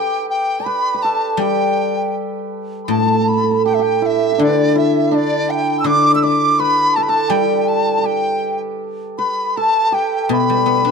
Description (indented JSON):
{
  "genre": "chinese traditional, Chinese chamber ensemble",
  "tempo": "81 BPM",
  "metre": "2/4",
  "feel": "rubato",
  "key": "G gong mode",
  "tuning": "A4 = 443 Hz",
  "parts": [
    { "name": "large dizi", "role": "melody", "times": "0.0-10.9 s", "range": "D5 to E6", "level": "-18 LUFS", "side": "equal", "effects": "none" },
    { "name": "hammered dulcimer", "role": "second line", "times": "0.0-10.9 s", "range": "D4 to E5", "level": "-20 LUFS", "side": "right 5 dB", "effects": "none" },
    { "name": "mellow large dizi", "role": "second line", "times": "0.0-10.9 s", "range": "D4 to D6", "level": "-23 LUFS", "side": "left 2 dB", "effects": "none" },
    { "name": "guzheng", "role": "accompaniment", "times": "1.4-10.9 s", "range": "A2 to D4", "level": "-20 LUFS", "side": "left 6 dB", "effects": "none" }
  ],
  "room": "light reverb",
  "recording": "dark, warm production",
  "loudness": "-14 LUFS",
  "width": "side -5 dB against mid",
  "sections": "0.0-2.9 A section; 2.9-10.9 B section",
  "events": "none",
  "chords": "none"
}